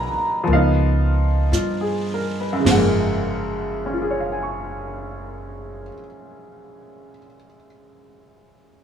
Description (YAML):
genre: jazz ballad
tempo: 50-62 BPM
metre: 4/4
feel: swing 66% on 8ths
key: F# major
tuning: A4 = 439 Hz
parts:
  - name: clear upright piano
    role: accompaniment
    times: 0.0-8.8 s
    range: F#2 to C#6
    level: -22 LUFS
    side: equal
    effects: none
  - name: upright bass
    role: bass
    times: 0.0-5.9 s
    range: F#1 to G2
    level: -23 LUFS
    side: right 1 dB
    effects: none
  - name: jazz brush drum kit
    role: drums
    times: 0.5-3.6 s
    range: brushed snare drum, crash cymbal, hi-hat, snare drum, toms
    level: -26 LUFS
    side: right 4 dB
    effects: none
room: little or no reverb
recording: studio reverb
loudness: -18 LUFS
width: side -8 dB against mid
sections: 0.0-2.7 A section; 2.7-7.4 B section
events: slowing down 0.0-2.7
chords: 0.5 C#13; 2.7 F#maj9